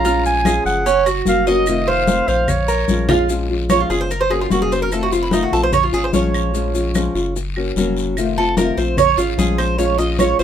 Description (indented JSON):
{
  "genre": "latin, Cuban son and guajira",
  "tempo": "148 BPM",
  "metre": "4/4",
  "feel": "straight",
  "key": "Bb minor",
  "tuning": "A4 = 440 Hz",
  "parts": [
    { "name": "warm clarinet", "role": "melody", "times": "0.0-3.1 s", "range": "C5 to Bb5", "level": "-20 LUFS", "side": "right 1 dB", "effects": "none" },
    { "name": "nylon-string guitar", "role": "accompaniment", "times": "0.0-10.4 s", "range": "C3 to Gb4", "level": "-20 LUFS", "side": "left 2 dB", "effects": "none" },
    { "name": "Cuban tres", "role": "arpeggios", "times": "0.0-10.4 s", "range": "Db4 to F5", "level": "-19 LUFS", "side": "right 5 dB", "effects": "none" },
    { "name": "round analog bass", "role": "bass", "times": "0.0-10.4 s", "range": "F1 to Bb1", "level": "-23 LUFS", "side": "left 1 dB", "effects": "none" },
    { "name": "congas", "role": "percussion", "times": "0.0-10.4 s", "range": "none", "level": "-22 LUFS", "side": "left 3 dB", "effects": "none" },
    { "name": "guiro", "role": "percussion", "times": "0.1-10.4 s", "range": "none", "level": "-34 LUFS", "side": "left 8 dB", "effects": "none" },
    { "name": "maracas", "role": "percussion", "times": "0.1-10.4 s", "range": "none", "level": "-33 LUFS", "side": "left 8 dB", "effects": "none" },
    { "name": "claves", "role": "percussion", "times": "0.5-10.4 s", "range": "none", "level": "-31 LUFS", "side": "right 4 dB", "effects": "none" }
  ],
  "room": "light reverb",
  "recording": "minimal, uncompressed stereo recording",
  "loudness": "-15 LUFS",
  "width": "side -9 dB against mid",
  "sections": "0.0-3.3 A section; 3.3-10.4 B section",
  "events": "drum fill 2.9-3.3; Cuban tres solo 3.3-10.4",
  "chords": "0.0 Bbm7; 0.9 Gb; 1.7 F7; 2.5 Bbm7; 4.1 Gb; 4.9 F7; 5.7 Bbm7; 7.4 Gb; 8.2 F7; 9.0 Bbm7"
}